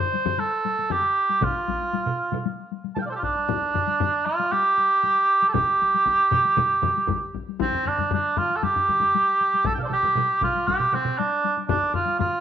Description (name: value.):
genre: japanese traditional, taiko drum ensemble.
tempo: 117 BPM.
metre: 4/4.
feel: straight.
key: G suspended pentatonic.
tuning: A4 = 440 Hz.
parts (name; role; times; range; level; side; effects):
mellow cor anglais; melody; 0.0-12.4 s; C4 to A5; -21 LUFS; right 2 dB; slapback echo.
taiko ensemble; percussion; 0.0-12.3 s; none; -29 LUFS; left 6 dB; none.
taiko ensemble; percussion; 0.1-12.3 s; none; -33 LUFS; left 16 dB; none.
taiko ensemble; percussion; 1.4-11.2 s; none; -30 LUFS; right 5 dB; none.
taiko ensemble; percussion; 1.4-11.8 s; none; -31 LUFS; left 6 dB; none.
room: wet spring reverb, RT60 1.8 s.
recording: 1960s-style stereo, nothing above 7.5 kHz.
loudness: -20 LUFS.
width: side -9 dB against mid.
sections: 0.0-7.6 A section; 7.6-12.4 B section.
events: none.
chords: none.